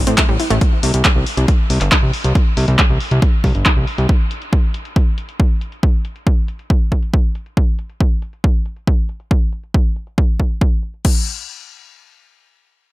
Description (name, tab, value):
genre	uplifting trance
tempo	138 BPM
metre	4/4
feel	straight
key	unclear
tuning	A4 = 436 Hz
part	fat analog bass	bass	0.0-4.1 s	G1 to A2	-16 LUFS	equal	sidechain pumping
part	downlifter	sound effects	0.0-0.6 s	none	barely audible	none	none
part	wide unison pluck	arpeggios	0.1-0.6 s	G3 to E4	-24 LUFS	equal	auto-pan, sidechain pumping, ping-pong delay
part	punchy analog drum machine	drums	0.1-11.1 s	crash cymbal, handclaps, hi-hat	-20 LUFS	left 1 dB	overdrive, low-pass filter on hats, low-pass filter on perc, low-pass filter on snare, low-pass filter on cymbals
part	electronic kick drum	drums	0.2-11.1 s	none	-14 LUFS	equal	overdrive
room	little or no reverb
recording	none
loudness	-14 LUFS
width	side -18 dB against mid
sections	0.0-11.0 A section; 11.0-12.9 B section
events	none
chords	0.0 N.C.; 0.6 C5; 4.1 N.C.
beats	0.18 | 0.61 1.05 1.48 1.92 | 2.35 2.79 3.22 3.66 | 4.09 4.53 4.96 5.40 | 5.83 6.27 6.70 7.13 | 7.57 8.01 8.44 8.87 | 9.31 9.74 10.18 10.61 | 11.05